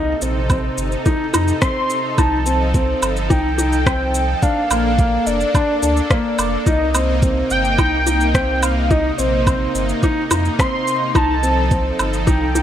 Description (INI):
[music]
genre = piano and strings electronica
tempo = 107 BPM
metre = 4/4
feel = straight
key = C dorian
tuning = A4 = 440 Hz
[part]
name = warm velvety synth lead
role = melody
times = 0.0-12.6 s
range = C5 to C6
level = -22 LUFS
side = equal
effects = chorus
[part]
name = lush unison pad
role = sustained chords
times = 0.0-12.6 s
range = C3 to A4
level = -24 LUFS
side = right 1 dB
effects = chorus, sidechain pumping
[part]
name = felt-muted upright piano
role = riff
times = 0.0-12.6 s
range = Bb3 to Eb4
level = -21 LUFS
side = left 1 dB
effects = tape echo
[part]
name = warm sub bass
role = bass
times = 0.0-12.6 s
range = F1 to F2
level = -21 LUFS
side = equal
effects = sidechain pumping
[part]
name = electronic shaker, woodblock and rim click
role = drums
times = 0.2-12.6 s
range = none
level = -23 LUFS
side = right 1 dB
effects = overdrive, studio ambience
[part]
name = electronic kick drum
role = drums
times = 0.5-12.4 s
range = none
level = -18 LUFS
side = equal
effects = overdrive, studio ambience
[sound]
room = light reverb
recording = none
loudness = -15 LUFS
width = side -10 dB against mid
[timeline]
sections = 0.0-12.6 A section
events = none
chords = 0.0 Cm7; 2.2 F7; 4.4 Bbmaj7; 6.7 Cm7; 11.2 F7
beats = 0.50 1.06 1.62 | 2.18 2.74 3.30 3.86 | 4.42 4.98 5.54 6.10 | 6.67 7.23 7.79 8.35 | 8.91 9.47 10.03 10.59 | 11.15 11.71 12.27